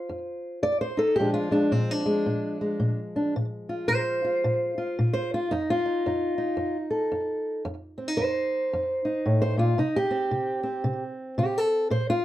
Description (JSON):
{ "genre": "acoustic country blues, solo or duo", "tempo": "112 BPM", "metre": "4/4", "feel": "swing 61% on 8ths", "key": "unclear", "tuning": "A4 = 440 Hz", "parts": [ { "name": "fingerpicked old ladder-braced acoustic guitar", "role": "solo", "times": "0.0-12.2 s", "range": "F2 to D5", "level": "-24 LUFS", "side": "equal", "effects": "slapback echo" } ], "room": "light reverb", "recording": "dry, close 1970s-style studio recording", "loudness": "-24 LUFS", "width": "side -14 dB against mid", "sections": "0.0-12.2 A section", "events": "steel-string acoustic guitar solo 0.0-12.2", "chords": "0.0 F7; 1.2 Bb7; 5.5 F7; 9.8 N.C." }